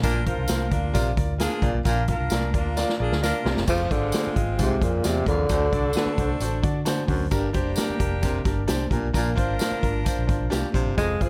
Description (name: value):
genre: uptempo 1960s-style soul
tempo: 132 BPM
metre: 4/4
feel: straight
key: unclear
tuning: A4 = 440 Hz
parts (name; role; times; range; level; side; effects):
- clear saxophone section; second line; 0.0-11.3 s; Ab3 to Bb4; -34 LUFS; equal; none
- warm concert grand piano; accompaniment; 0.0-11.3 s; G2 to F5; -32 LUFS; equal; none
- breathy baritone saxophone; riff; 0.0-11.2 s; D2 to C3; -33 LUFS; equal; none
- vintage muted fingered electric bass; bass; 0.0-11.3 s; F1 to D3; -30 LUFS; equal; none
- swinging big-band drum kit; drums; 0.0-11.3 s; crash cymbal, hi-hat, kick drum, snare drum; -28 LUFS; equal; none
- tambourine; percussion; 0.0-11.1 s; none; -39 LUFS; equal; none
- breathy tenor saxophone; melody; 3.7-6.6, 11.0-11.3 s; Bb2 to Ab3; -28 LUFS; equal; none
room: light reverb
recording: none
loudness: -24 LUFS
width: mono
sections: 0.0-3.7 A section; 3.7-11.3 B section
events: drum fill 2.8-3.7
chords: 0.0 Bb; 3.7 Fm; 5.5 D7; 7.3 Gm; 9.1 Bb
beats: | 0.03 0.49 0.94 1.40 | 1.85 2.31 2.76 3.22 | 3.67 4.13 4.58 5.04 | 5.50 5.95 6.41 6.87 | 7.32 7.78 8.23 8.69 | 9.15 9.61 10.06 10.52 | 10.98